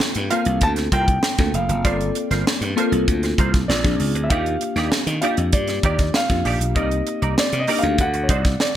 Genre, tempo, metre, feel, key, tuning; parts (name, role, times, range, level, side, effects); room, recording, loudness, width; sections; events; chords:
polished 1980s jazz-funk pop; 98 BPM; 4/4; straight; G minor; A4 = 439 Hz
warm concert grand piano; melody; 0.0-8.8 s; C#5 to A5; -25 LUFS; equal
bell-like FM electric piano; accompaniment; 0.0-8.0 s; Bb3 to A4; -25 LUFS; left 3 dB; wide subtle chorus
semi-hollow electric guitar; riff; 0.0-8.6 s; Eb4 to D5; -28 LUFS; right 5 dB; ensemble chorus
slap bass; bass; 0.0-8.5 s; F1 to Eb3; -22 LUFS; equal
crisp fusion drum kit; drums; 0.0-8.7 s; hi-hat, kick drum, snare drum; -21 LUFS; equal; gated reverb
small room reverb; -17 LUFS; side -11 dB against mid
0.0-8.8 A section
0.0 Gm11; 3.7 Bb9; 4.3 Ebmaj7; 6.8 Cm9; 8.0 D7b9